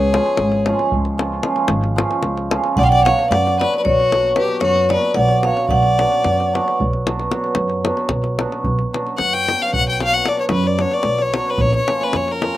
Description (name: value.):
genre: balkan folk, Balkan wedding band.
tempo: 224 BPM (eighths).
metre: 11/8.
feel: straight.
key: B hungarian minor.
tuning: A4 = 438 Hz.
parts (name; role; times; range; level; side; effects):
vibraphone with medium hard mallets; melody; 0.0-6.8 s; B4 to G5; -17 LUFS; equal; slapback echo.
bright violin; second line; 0.0-12.6 s; F#4 to G5; -20 LUFS; left 3 dB; slapback echo.
upright bass; bass; 0.0-12.5 s; G#1 to F#2; -21 LUFS; right 1 dB; none.
davul; percussion; 0.0-12.6 s; none; -24 LUFS; left 2 dB; none.
cimbalom; accompaniment; 0.1-12.6 s; E#3 to F#4; -22 LUFS; right 2 dB; slapback echo.
room: little or no reverb.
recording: recorded outdoors, with no room sound.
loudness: -15 LUFS.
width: side -14 dB against mid.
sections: 0.0-8.6 A section; 8.6-12.6 B section.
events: violin solo 8.6-12.6.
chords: 0.0 C#; 2.8 Bm; 11.6 A#m.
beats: 0.10 0.37 0.63 0.90 1.17 1.43 1.70 1.97 2.23 2.50 | 2.77 3.04 3.30 3.57 3.84 4.10 4.37 4.64 4.90 5.17 5.44 | 5.71 5.97 6.24 6.51 6.77 7.04 7.31 7.58 7.84 8.11 8.38 | 8.65 8.91 9.18 9.45 9.72 9.98 10.25 10.52 10.79 11.06 11.32 | 11.59 11.86 12.13 12.39.